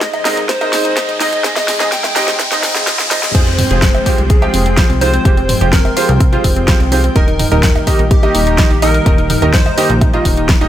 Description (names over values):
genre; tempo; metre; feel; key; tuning
progressive house; 126 BPM; 4/4; straight; unclear; A4 = 440 Hz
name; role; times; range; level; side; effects
plucky unison lead; melody; 0.0-10.2 s; G4 to G5; -21 LUFS; left 1 dB; sidechain pumping, digital delay
airy breathy pad; sustained chords; 0.0-10.7 s; C3 to G5; -24 LUFS; left 2 dB; chorus, sidechain pumping
wide unison pluck; arpeggios; 0.0-10.7 s; Ab3 to Bb4; -21 LUFS; equal; sidechain pumping, tape echo
deep house drum kit; drums; 0.0-10.7 s; crash cymbal, hi-hat, snare drum; -19 LUFS; left 1 dB; none
electronic kick drum; drums; 0.0-10.6 s; none; -12 LUFS; equal; high-pass filter on kick
riser, swell and downlifter; sound effects; 0.0-7.2 s; none; -22 LUFS; left 1 dB; none
electronic bongos, congas and toms; percussion; 0.1-10.1 s; none; -23 LUFS; right 2 dB; overdrive, sidechain pumping on toms, sidechain pumping on perc
warm baby grand piano; stabs; 0.3-10.7 s; Ab2 to G5; -19 LUFS; right 3 dB; sidechain pumping
plucky analog bass; bass; 3.3-10.7 s; Eb1 to C2; -16 LUFS; equal; sidechain pumping
room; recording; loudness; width
light reverb; high-pass filter; -10 LUFS; side -11 dB against mid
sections
0.0-3.3 A section; 3.3-10.7 B section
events
build-up 0.0-3.3; drum fill 0.0-3.3; riser 0.0-3.3; filter sweep on analog synth pad 0.0-3.3; filter sweep 0.0-3.3; swell 2.4-3.3; drop 3.3-10.7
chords
0.0 Ab; 3.3 Fmadd9; 7.2 Eb